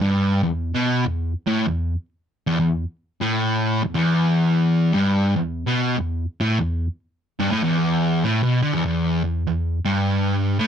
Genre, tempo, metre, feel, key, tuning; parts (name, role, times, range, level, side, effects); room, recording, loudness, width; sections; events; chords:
metal; 98 BPM; 4/4; swing 62% on 8ths; E minor; A4 = 443 Hz
fuzz guitar; solo; 0.0-10.7 s; E2 to D3; -19 LUFS; equal; distortion
light reverb; dark, warm production; -19 LUFS; side -8 dB against mid
0.0-8.9 A section; 8.9-10.7 B section